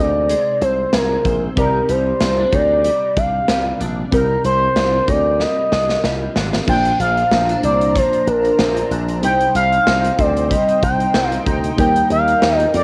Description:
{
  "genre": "1980s-style pop",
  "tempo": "94 BPM",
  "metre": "4/4",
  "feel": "swing 55% on 16ths",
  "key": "unclear",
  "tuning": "A4 = 441 Hz",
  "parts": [
    { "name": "expressive synth lead", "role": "melody", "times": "0.0-12.8 s", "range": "Bb4 to G5", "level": "-19 LUFS", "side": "equal", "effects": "chorus, cassette tape, tape echo" },
    { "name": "FM electric piano with soft pad layer", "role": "accompaniment", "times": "0.0-12.8 s", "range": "Bb2 to D5", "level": "-27 LUFS", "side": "equal", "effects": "chorus, phaser, cassette tape" },
    { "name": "twelve-string electric guitar", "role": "riff", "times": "0.0-12.8 s", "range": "F3 to Eb4", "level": "-33 LUFS", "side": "equal", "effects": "ensemble chorus, cassette tape, tape echo" },
    { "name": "slap bass with an envelope filter", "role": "bass", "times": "0.0-12.8 s", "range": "Ab1 to F2", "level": "-24 LUFS", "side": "equal", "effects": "none" },
    { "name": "big rock drum kit", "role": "drums", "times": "0.3-12.8 s", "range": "crash cymbal, hi-hat, kick drum, snare drum", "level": "-24 LUFS", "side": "equal", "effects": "none" },
    { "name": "sweeping resonant pad", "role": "sustained chords", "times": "6.7-12.8 s", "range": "D4 to Bb5", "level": "-28 LUFS", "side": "equal", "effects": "chorus, cassette tape" }
  ],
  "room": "light reverb",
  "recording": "home recording on cassette",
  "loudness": "-17 LUFS",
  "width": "mono",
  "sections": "0.0-6.7 A section; 6.7-12.8 B section",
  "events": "drum fill 5.4-6.7",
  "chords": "0.0 Ab; 1.6 Cmadd9; 6.7 Bbadd9; 9.2 Cm; 11.8 Eb"
}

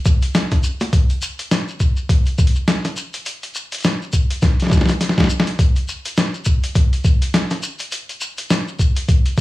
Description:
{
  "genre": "glitch hop",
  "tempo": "103 BPM",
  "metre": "4/4",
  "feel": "swing 58% on 16ths",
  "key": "none",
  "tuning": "none",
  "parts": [
    { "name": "electronic kick drum", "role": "drums", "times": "0.1-9.4 s", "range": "none", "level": "-15 LUFS", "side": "equal", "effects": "small room ambience" },
    { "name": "shekere", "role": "percussion", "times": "0.1-9.4 s", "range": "none", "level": "-29 LUFS", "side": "left 2 dB", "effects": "none" },
    { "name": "boom bap sampler-style drum kit", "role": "drums", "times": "0.2-9.4 s", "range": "hi-hat, snare drum", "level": "-19 LUFS", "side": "left 1 dB", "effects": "small room ambience" }
  ],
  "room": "light reverb",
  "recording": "dry, gritty hardware recording, vinyl crackle, studio reverb",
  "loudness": "-16 LUFS",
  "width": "side -18 dB against mid",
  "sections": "0.0-9.4 A section",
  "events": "drum fill 4.4-5.6",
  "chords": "none"
}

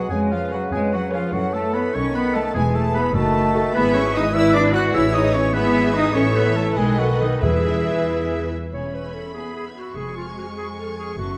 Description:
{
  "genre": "quick classical-period movement for symphony orchestra",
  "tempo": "98 BPM (dotted quarters)",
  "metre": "6/8",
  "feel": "rubato",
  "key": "E major",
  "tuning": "A4 = 440 Hz",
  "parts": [
    { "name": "rich studio violin section", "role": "melody", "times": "0.0-11.4 s", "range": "C#5 to C#6", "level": "-36 LUFS", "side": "equal", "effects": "none" },
    { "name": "bright clarinet", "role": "second line", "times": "0.0-11.4 s", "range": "E#4 to D5", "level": "-33 LUFS", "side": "equal", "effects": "none" },
    { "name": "clear oboe", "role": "second line", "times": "0.0-8.5 s", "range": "D#4 to F#5", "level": "-31 LUFS", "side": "equal", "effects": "none" },
    { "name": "mellow silver concert flute", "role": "second line", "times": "0.0-8.5 s", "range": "D#5 to F#6", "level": "-31 LUFS", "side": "equal", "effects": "none" },
    { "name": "rich chamber violin section", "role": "second line", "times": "0.0-11.4 s", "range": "D#5 to G#6", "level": "-35 LUFS", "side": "equal", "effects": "none" },
    { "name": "mellow bassoon", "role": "accompaniment", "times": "0.0-8.5 s", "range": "C#3 to E3", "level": "-30 LUFS", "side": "equal", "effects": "none" },
    { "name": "rich chamber viola section", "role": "accompaniment", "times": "0.0-11.4 s", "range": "G#3 to C#5", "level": "-31 LUFS", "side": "equal", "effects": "none" },
    { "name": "mellow French horn section", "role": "sustained chords", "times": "0.0-8.5 s", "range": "E4 to D#5", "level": "-30 LUFS", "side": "equal", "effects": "none" },
    { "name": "clear chamber cello section", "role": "bass", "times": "0.0-11.4 s", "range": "E2 to F#4", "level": "-26 LUFS", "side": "equal", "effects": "none" },
    { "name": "rich chamber double bass section", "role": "bass", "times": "0.1-11.4 s", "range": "E1 to F#2", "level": "-27 LUFS", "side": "equal", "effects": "none" },
    { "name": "timpani", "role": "percussion", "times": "7.4-8.0 s", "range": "E2", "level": "-27 LUFS", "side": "equal", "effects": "none" }
  ],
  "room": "moderate scoring stage reverb, RT60 1.8 s",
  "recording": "none",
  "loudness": "-20 LUFS",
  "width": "mono",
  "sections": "0.0-8.7 A section; 8.7-11.4 A section",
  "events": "none",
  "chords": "0.1 C#7/E#; 1.3 F#m7; 1.9 B7; 2.6 E; 3.2 D#dim/F#; 3.7 E/G#; 4.3 E7/G#; 4.9 Amaj7; 5.5 E/G#; 6.1 A; 6.8 B7; 7.4 E; 10.0 C#/E#"
}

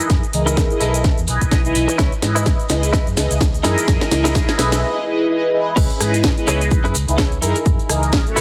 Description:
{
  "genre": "filtered disco house",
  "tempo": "127 BPM",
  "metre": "4/4",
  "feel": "swing 57% on 16ths",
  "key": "C# minor",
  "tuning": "A4 = 440 Hz",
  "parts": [
    { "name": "mellow synth brass", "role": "accompaniment", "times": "0.0-8.4 s", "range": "E3 to G#5", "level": "-23 LUFS", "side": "equal", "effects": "chorus, phaser, sidechain pumping, low-pass filter" },
    { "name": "direct-recorded clean electric guitar", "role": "riff", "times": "0.0-8.4 s", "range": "C#4 to D#5", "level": "-27 LUFS", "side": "equal", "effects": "tremolo, sidechain pumping, low-pass filter" },
    { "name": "house drum kit", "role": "drums", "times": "0.0-8.4 s", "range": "crash cymbal, hi-hat, rim click, shaker, snare drum", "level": "-25 LUFS", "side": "equal", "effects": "sidechain pumping on hats, sidechain pumping on perc, sidechain pumping on cymbals" },
    { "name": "vintage muted fingered electric bass", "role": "bass", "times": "0.1-8.4 s", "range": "B1 to G#2", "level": "-24 LUFS", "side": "equal", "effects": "sidechain pumping, low-pass filter" },
    { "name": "electronic kick drum", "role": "drums", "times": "0.1-8.2 s", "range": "none", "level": "-20 LUFS", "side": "equal", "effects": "none" },
    { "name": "maracas", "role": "percussion", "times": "0.1-8.4 s", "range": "none", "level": "-35 LUFS", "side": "equal", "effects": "none" }
  ],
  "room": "moderate plate reverb, RT60 1.9 s, digital ambience",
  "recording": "faint mains hum",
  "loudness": "-17 LUFS",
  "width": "mono",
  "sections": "0.0-5.8 A section; 5.8-8.4 B section",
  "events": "build-up 0.0-5.8; drum fill 0.0-4.8; drop 5.8-8.4",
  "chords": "0.0 F#13 (rootless); 0.8 B7sus4; 2.0 C#m7; 3.6 F#13; 4.6 B7sus4; 5.8 C#m7; 7.4 F#13"
}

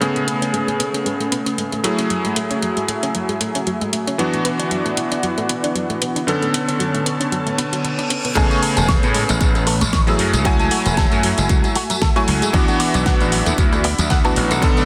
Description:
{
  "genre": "nu-disco, nu disco",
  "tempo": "115 BPM",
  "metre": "4/4",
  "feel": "swing 55% on 16ths",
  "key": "A major",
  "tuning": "A4 = 444 Hz",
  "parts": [
    { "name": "bright electric grand piano", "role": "accompaniment", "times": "0.0-14.9 s", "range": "C#3 to G#5", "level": "-23 LUFS", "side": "equal", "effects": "digital delay" },
    { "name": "lush unison pad", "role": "sustained chords", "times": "0.0-14.9 s", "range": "D3 to C#6", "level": "-28 LUFS", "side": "equal", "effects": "chorus, sidechain pumping" },
    { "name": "analog pluck", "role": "arpeggios", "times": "0.0-14.8 s", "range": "F#3 to F#4", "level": "-29 LUFS", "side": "equal", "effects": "chorus, vintage 12-bit sampler grit, sidechain pumping, delay" },
    { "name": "pop drum kit", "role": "drums", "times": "0.0-14.9 s", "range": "crash cymbal, hi-hat, rim click, snare drum, tambourine", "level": "-26 LUFS", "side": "equal", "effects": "studio reverb" },
    { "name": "reverse cymbal", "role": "sound effects", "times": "7.6-8.4 s", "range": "none", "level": "-30 LUFS", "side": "equal", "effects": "none" },
    { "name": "electric guitar with an envelope filter", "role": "riff", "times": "8.4-14.9 s", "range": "F#3 to A5", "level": "-28 LUFS", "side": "equal", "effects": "analog chorus, digital delay" },
    { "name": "gritty slap bass", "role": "bass", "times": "8.4-14.8 s", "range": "E1 to A2", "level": "-23 LUFS", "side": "equal", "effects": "overdrive" },
    { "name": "electronic kick drum", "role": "drums", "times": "8.4-14.7 s", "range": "none", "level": "-21 LUFS", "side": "equal", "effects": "studio reverb" }
  ],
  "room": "light reverb, digital ambience",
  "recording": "dense, heavily limited modern master",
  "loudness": "-18 LUFS",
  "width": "mono",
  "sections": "0.0-8.4 A section; 8.4-14.9 B section",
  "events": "filter sweep on analog synth pad 0.0-8.4; filter sweep on synth arpeggio sound 0.0-8.4; reverse cymbal 7.6-8.4; drop 8.4-14.9",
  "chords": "0.0 Amaj9; 1.8 F#m9; 4.2 D69; 6.3 Bm9; 8.4 Amaj9; 10.2 F#m9; 12.5 D69"
}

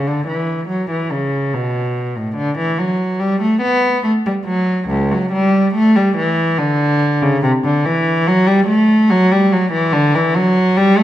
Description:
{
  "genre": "classical, baroque-style suite movement for unaccompanied cello",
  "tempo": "72 BPM",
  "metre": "3/4",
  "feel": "rubato",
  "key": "B minor",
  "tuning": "A4 = 437 Hz",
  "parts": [
    { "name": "warm cello", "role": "solo", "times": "0.0-11.0 s", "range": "C#2 to B3", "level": "-13 LUFS", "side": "equal", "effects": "none" }
  ],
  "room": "wet recital hall reverb, RT60 1.5 s",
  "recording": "none",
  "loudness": "-13 LUFS",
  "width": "side -13 dB against mid",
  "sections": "0.0-11.0 A section",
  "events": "none",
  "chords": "none"
}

